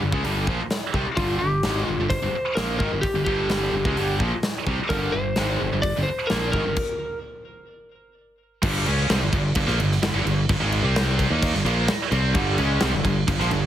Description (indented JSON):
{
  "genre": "hard rock",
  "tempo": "129 BPM",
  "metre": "4/4",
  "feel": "straight",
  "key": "G minor",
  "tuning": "A4 = 439 Hz",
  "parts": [
    { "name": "raw garage guitar", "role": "riff", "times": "0.0-6.8, 12.3-13.7 s", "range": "G2 to C#4", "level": "-30 LUFS", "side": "equal", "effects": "overdrive" },
    { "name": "scooped high-gain guitar", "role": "riff", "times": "0.0-13.7 s", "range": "G2 to Eb4", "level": "-25 LUFS", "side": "right 1 dB", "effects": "distortion" },
    { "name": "modern bright fingered electric bass", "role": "bass", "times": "0.0-13.7 s", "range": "G1 to Eb2", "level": "-25 LUFS", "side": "equal", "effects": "none" },
    { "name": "big rock drum kit", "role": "drums", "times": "0.1-13.6 s", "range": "crash cymbal, hi-hat, kick drum, snare drum", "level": "-27 LUFS", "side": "equal", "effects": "none" },
    { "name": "lightly driven lead guitar", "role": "melody", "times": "1.2-7.2 s", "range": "F4 to D5", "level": "-27 LUFS", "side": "equal", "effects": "digital delay" }
  ],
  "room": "light reverb",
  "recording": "heavily compressed radio sound, multiband compression, faint mains hum",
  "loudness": "-20 LUFS",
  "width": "side -11 dB against mid",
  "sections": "0.0-8.6 A section; 8.6-13.7 B section",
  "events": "stop 6.8-8.6",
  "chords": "0.0 Gm; 8.6 G5; 10.8 C5; 11.3 Gm",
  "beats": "0.24 0.71 | 1.18 1.64 2.11 2.57 | 3.04 3.50 3.97 4.44 | 4.90 5.37 5.83 6.30 | 6.76 7.23 7.70 8.16 | 8.63 9.09 9.56 10.02 | 10.49 10.95 11.42 11.88 | 12.35 12.81 13.28"
}